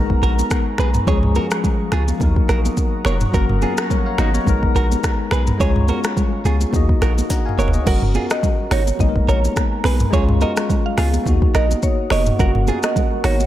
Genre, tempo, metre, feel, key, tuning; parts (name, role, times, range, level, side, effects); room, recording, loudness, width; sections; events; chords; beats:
afrobeats; 106 BPM; 4/4; swing 55% on 16ths; F# major; A4 = 440 Hz
bell-like tine electric piano; accompaniment; 0.0-13.5 s; E#3 to A#5; -24 LUFS; left 4 dB; medium stereo tremolo
deep dark ambient pad; sustained chords; 0.0-13.5 s; A#4 to A#5; -29 LUFS; equal; chorus, built-in reverb
punchy sub bass; bass; 0.0-13.4 s; E#1 to D#2; -18 LUFS; equal
afro-pop drum kit; drums; 0.1-13.5 s; crash cymbal, finger snaps, hi-hat, kick drum, rim click, shaker, snare drum, toms; -20 LUFS; equal
direct-recorded clean electric guitar; riff; 0.2-13.4 s; D#4 to C#5; -26 LUFS; right 6 dB; spring reverb, tape echo
congas; percussion; 0.4-13.5 s; -28 LUFS; right 5 dB
mallet-like synth pluck; melody; 7.9-13.4 s; C#5 to F#5; -24 LUFS; right 2 dB; chorus
digital ambience; dark, warm production; -15 LUFS; side -13 dB against mid
0.0-7.9 A section; 7.9-13.5 B section
drum fill 7.3-7.9
0.0 G#madd9; 1.1 C#; 2.2 D#m; 3.3 F#; 4.5 G#madd9; 5.6 C#; 6.7 D#m; 7.9 F#; 9.0 G#madd9; 10.1 C#; 11.3 D#m; 12.4 F#
0.51 | 1.07 1.64 2.21 2.77 | 3.34 3.90 4.47 5.04 | 5.60 6.17 6.74 7.30 | 7.87 8.43 9.00 9.56 | 10.13 10.70 11.26 11.83 | 12.39 12.96